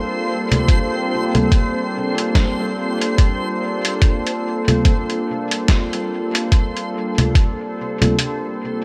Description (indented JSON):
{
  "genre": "ambient dub",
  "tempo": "72 BPM",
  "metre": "4/4",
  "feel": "swing 59% on 16ths",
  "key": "G minor",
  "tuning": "A4 = 435 Hz",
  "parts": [
    { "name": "warbly tape-like pad", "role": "sustained chords", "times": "0.0-8.8 s", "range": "G3 to A4", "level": "-25 LUFS", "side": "equal", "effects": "chorus, built-in reverb" },
    { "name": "backwards swelling texture", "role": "texture", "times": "0.0-7.4 s", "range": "C4 to C5", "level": "-29 LUFS", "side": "equal", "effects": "built-in reverb" },
    { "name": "lo-fi sampler-style drum kit", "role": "drums", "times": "0.5-8.4 s", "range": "congas, hi-hat, snare drum", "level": "-23 LUFS", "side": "equal", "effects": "overdrive, small room ambience, dub echo" },
    { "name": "electronic kick drum", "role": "drums", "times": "0.7-7.5 s", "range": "none", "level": "-17 LUFS", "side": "equal", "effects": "overdrive, small room ambience" },
    { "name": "mellow tine electric piano", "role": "stabs", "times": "1.3-8.2 s", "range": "G3 to A4", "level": "-28 LUFS", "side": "equal", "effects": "none" }
  ],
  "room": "light reverb",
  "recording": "none",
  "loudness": "-19 LUFS",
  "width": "mono",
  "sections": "0.0-7.4 A section; 7.4-8.8 B section",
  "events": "none",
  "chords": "0.0 Gm11",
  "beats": "| 0.69 1.52 2.35 3.19 | 4.02 4.85 5.69 6.52 | 7.35 8.19"
}